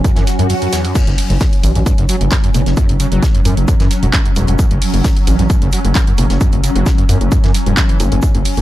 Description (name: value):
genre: driving peak-time techno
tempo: 132 BPM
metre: 4/4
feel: straight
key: unclear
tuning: A4 = 441 Hz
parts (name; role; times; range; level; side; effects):
- overdriven acid bass; riff; 0.0-8.6 s; F#1 to F#3; -21 LUFS; equal; ensemble chorus, cassette tape, sidechain pumping, analog delay
- swarming drone; drone; 0.0-8.6 s; F#3 to C#4; -21 LUFS; equal; built-in reverb, sidechain pumping
- electronic kick drum; drums; 0.0-8.3 s; none; -14 LUFS; equal; none
- techno drum kit; drums; 0.0-8.6 s; crash cymbal, handclaps, hi-hat; -22 LUFS; right 2 dB; none
- swell; sound effects; 0.2-1.0 s; none; -21 LUFS; right 2 dB; none
- damped 70s drum kit; drums; 0.1-8.6 s; hi-hat, shaker, snare drum; -30 LUFS; left 1 dB; sidechain pumping on hats, high-pass filter on hats, high-pass filter on snare, sidechain pumping on perc, high-pass filter on perc, high-pass filter on room
- gritty driven synth bass; bass; 0.2-8.6 s; E1 to F#2; -15 LUFS; equal; sidechain pumping
room: little or no reverb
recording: dry, gritty hardware recording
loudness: -11 LUFS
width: side -14 dB against mid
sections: 0.0-8.6 A section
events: swell 0.2-1.0; break 0.5-1.0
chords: 0.0 F#5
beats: 0.04 0.50 | 0.95 1.41 1.86 2.32 | 2.77 3.23 3.68 4.13 | 4.59 5.04 5.50 5.95 | 6.41 6.86 7.32 7.77 | 8.23